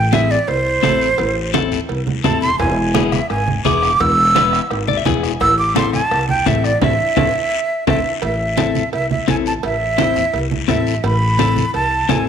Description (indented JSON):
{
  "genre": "latin, cumbia",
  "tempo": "170 BPM",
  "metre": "4/4",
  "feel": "straight",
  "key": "A harmonic minor",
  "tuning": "A4 = 439 Hz",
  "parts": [
    { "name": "breathy jazz flute", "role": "melody", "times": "0.0-12.3 s", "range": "C5 to E6", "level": "-18 LUFS", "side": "right 2 dB", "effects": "none" },
    { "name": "upright bass", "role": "bass", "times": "0.0-12.3 s", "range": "E1 to C2", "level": "-21 LUFS", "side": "left 1 dB", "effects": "none" },
    { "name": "clean electric guitar", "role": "accompaniment", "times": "0.1-12.3 s", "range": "B3 to G#5", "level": "-20 LUFS", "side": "left 11 dB", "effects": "none" },
    { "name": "congas", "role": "percussion", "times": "0.1-12.3 s", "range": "none", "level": "-22 LUFS", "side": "right 7 dB", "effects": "none" },
    { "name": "cowbell and timbales", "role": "percussion", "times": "0.1-12.3 s", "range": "none", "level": "-27 LUFS", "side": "right 10 dB", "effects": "none" },
    { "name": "guiro", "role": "percussion", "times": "0.1-12.3 s", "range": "none", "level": "-31 LUFS", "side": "left 12 dB", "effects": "none" },
    { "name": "bombo", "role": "percussion", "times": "2.6-8.0 s", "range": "none", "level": "-28 LUFS", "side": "left 5 dB", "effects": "none" }
  ],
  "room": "moderate echo chamber reverb, RT60 1.4 s, small room ambience",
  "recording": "1960s-style stereo with parts hard left and right",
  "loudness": "-14 LUFS",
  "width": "side -8 dB against mid",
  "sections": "0.0-8.2 A section; 8.2-12.3 B section",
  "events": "flute solo 0.0-8.2; clean electric guitar fill 4.7-5.4; band accent 6.8-8.2",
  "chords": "0.0 Am; 2.6 E; 5.4 Am",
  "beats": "0.13 0.48 0.84 | 1.19 1.54 1.89 2.25 | 2.60 2.95 3.30 3.65 | 4.00 4.36 4.71 5.06 | 5.41 5.76 6.12 6.47 | 6.82 7.17 7.52 7.87 | 8.22 8.58 8.93 9.28 | 9.63 9.98 10.34 10.69 | 11.04 11.39 11.74 12.10"
}